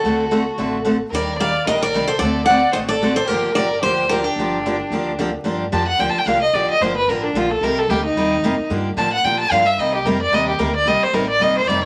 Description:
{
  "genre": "acoustic string swing (jazz manouche)",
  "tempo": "222 BPM",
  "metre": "4/4",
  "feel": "swing 57% on 8ths",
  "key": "G minor",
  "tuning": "A4 = 440 Hz",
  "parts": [
    { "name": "picked steel-string acoustic guitar", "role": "melody", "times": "0.0-5.2 s", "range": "G4 to F#5", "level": "-22 LUFS", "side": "equal", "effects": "none" },
    { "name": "clear violin", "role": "second line", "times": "0.0-11.9 s", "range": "D4 to A5", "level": "-22 LUFS", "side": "equal", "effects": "none" },
    { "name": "picked steel-string acoustic guitar", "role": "accompaniment", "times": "0.0-11.8 s", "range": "C3 to A4", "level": "-24 LUFS", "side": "equal", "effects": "none" },
    { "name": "upright bass", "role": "bass", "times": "0.0-11.9 s", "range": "F1 to Bb2", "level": "-32 LUFS", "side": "equal", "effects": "none" }
  ],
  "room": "wet studio reverb, RT60 0.6 s",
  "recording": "vinyl crackle",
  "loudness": "-19 LUFS",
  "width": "mono",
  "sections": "0.0-5.5 A section; 5.5-11.9 B section",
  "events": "violin solo 5.5-11.9",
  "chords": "0.0 D7; 1.1 Ebmaj7; 2.2 D7; 3.3 Gm7; 7.6 Cm7; 8.7 Gm7; 9.8 Cm7"
}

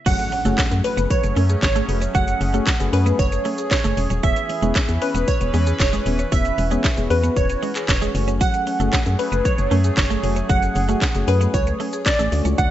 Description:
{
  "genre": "dance-pop",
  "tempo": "115 BPM",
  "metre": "4/4",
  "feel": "straight",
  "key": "F# minor",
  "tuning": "A4 = 440 Hz",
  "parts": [
    { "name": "glassy wavetable pluck", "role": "melody", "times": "0.1-12.7 s", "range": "B4 to F#5", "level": "-24 LUFS", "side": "right 2 dB", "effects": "chorus, digital delay" },
    { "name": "soft electric-piano-like synth keys", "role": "accompaniment", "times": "0.1-12.7 s", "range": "A3 to C#5", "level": "-28 LUFS", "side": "left 4 dB", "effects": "chorus, sidechain pumping" },
    { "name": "sweeping resonant pad", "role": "sustained chords", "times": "0.1-12.7 s", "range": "D3 to C#5", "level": "-30 LUFS", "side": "equal", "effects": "chorus, sidechain pumping" },
    { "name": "mallet-like synth pluck", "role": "arpeggios", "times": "0.1-12.7 s", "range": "D3 to F#5", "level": "-31 LUFS", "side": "left 2 dB", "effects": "chorus, sidechain pumping, digital delay" },
    { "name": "twelve-string electric guitar", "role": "riff", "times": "0.1-12.7 s", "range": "G#3 to F#4", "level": "-29 LUFS", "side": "right 7 dB", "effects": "wide subtle chorus" },
    { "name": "organ-like FM bass", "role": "bass", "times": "0.1-12.7 s", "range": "D#1 to F#2", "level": "-21 LUFS", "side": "equal", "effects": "sidechain pumping" },
    { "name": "house drum kit", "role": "drums", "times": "0.1-12.7 s", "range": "crash cymbal, handclaps, hi-hat, kick drum, shaker, snare drum", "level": "-22 LUFS", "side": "equal", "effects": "none" },
    { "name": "impact", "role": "sound effects", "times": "0.1-2.1 s", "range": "none", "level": "-33 LUFS", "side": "left 1 dB", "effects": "none" },
    { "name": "tambourine", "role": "percussion", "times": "0.6-12.2 s", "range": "none", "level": "-38 LUFS", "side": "right 5 dB", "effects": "none" }
  ],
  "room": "light reverb",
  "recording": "nothing above 7.9 kHz",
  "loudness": "-17 LUFS",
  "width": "side -12 dB against mid",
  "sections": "0.1-12.7 A section",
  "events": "impact 0.1-2.1",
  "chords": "0.1 F#madd9; 4.2 C#m7; 8.1 F#madd9"
}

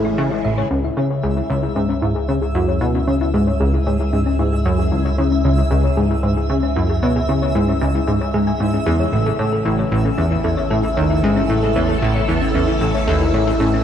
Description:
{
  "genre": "ambient, sequencer-driven space music",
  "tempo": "114 BPM",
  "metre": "4/4",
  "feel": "straight",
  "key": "C# minor",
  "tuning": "A4 = 438 Hz",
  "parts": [
    { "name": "phased string machine", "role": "sustained chords", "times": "0.0-13.8 s", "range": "C#3 to A5", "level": "-26 LUFS", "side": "left 1 dB", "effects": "ensemble chorus, phaser" },
    { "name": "thumb-piano-like synth pluck", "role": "arpeggios", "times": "0.0-13.8 s", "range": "C#4 to G#5", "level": "-24 LUFS", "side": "left 3 dB", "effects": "chorus, auto-pan, ping-pong delay" },
    { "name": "plucky analog bass", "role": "riff", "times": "0.0-13.8 s", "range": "A1 to C#3", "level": "-18 LUFS", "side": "equal", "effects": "lush chorus, ping-pong delay" },
    { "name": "warm sub bass", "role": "bass", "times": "0.0-13.8 s", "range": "A1 to C#2", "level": "-23 LUFS", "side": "equal", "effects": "none" },
    { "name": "twinkling granular texture", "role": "texture", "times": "1.0-13.8 s", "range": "E5", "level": "-27 LUFS", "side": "right 1 dB", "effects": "built-in reverb" }
  ],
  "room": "moderate plate reverb, RT60 2.6 s",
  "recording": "echo-heavy mix, cassette tape",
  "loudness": "-16 LUFS",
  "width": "side -9 dB against mid",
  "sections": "0.7-13.8 A section",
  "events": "fade-in on string machine 0.7-13.8; filter sweep on synth arpeggio sound 0.7-13.8",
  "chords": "0.0 A; 0.7 C#m; 9.1 A"
}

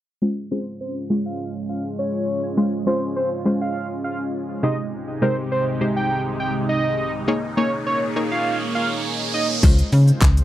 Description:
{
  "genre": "dance-pop",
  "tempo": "102 BPM",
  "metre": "4/4",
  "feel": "straight",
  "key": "unclear",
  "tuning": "A4 = 440 Hz",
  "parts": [
    { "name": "analog pluck", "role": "accompaniment", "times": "0.2-10.4 s", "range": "C3 to Db5", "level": "-22 LUFS", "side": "left 1 dB", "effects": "chorus, sidechain pumping, low-pass filter" },
    { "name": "lush unison pad", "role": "sustained chords", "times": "0.5-10.4 s", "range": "C3 to Db5", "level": "-26 LUFS", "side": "right 1 dB", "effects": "chorus, phaser, sidechain pumping, low-pass filter" },
    { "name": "fat analog lead", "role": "melody", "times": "0.5-9.5 s", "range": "C5 to G5", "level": "-25 LUFS", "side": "right 2 dB", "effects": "phaser, sidechain pumping, low-pass filter, tape echo" },
    { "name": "riser", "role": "sound effects", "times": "6.8-9.6 s", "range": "none", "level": "-29 LUFS", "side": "right 3 dB", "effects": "none" },
    { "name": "slap-like FM bass", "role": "bass", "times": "9.6-10.4 s", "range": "Db2 to Db3", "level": "-15 LUFS", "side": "equal", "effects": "sidechain pumping" },
    { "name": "pop drum kit", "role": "drums", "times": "9.6-10.4 s", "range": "crash cymbal, handclaps, hi-hat, kick drum, shaker", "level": "-16 LUFS", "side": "equal", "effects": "none" }
  ],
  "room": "little or no reverb",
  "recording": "dry, close 1970s-style studio recording",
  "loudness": "-19 LUFS",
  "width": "side -13 dB against mid",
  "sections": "0.2-9.6 A section",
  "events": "filter sweep 0.2-9.6; riser 6.8-9.6",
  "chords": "0.2 Dbmaj7; 4.6 Abmaj7/C; 7.3 Eb7sus4; 9.6 Dbmaj7"
}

